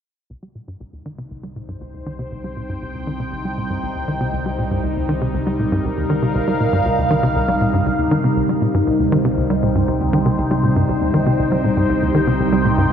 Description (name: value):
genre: ambient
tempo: 119 BPM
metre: 4/4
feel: straight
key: C minor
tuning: A4 = 440 Hz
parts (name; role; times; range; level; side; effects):
- phased analog pad; sustained chords; 2.0-12.9 s; C3 to G5; -19 LUFS; equal; phaser, chorus
- tight sequencer bass; riff; 0.3-12.9 s; C2 to G3; -20 LUFS; equal; wide subtle chorus, tape echo
- analog drone; bass; 1.5-12.9 s; C2; -28 LUFS; equal; chorus, phaser, tube saturation
- soft round pluck; arpeggios; 8.4-12.9 s; G3 to C5; -33 LUFS; moving between left 2 dB and right 5 dB; none
room: wet cathedral reverb, RT60 5.8 s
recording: in a vast, echoing space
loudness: -16 LUFS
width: side -8 dB against mid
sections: 0.3-8.4 A section; 8.4-12.9 B section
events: fade-in on analog synth bass 0.3-8.4; fade-in on analog synth pad 0.3-8.4; fade-in on synth drone 0.3-8.4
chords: 0.3 Cm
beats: | 0.30 0.80 1.31 1.81 | 2.31 2.82 3.32 3.83 | 4.33 4.83 5.34 5.84 | 6.35 6.85 7.36 7.86 | 8.37 8.87 9.37 9.88 | 10.38 10.89 11.39 11.89 | 12.40 12.90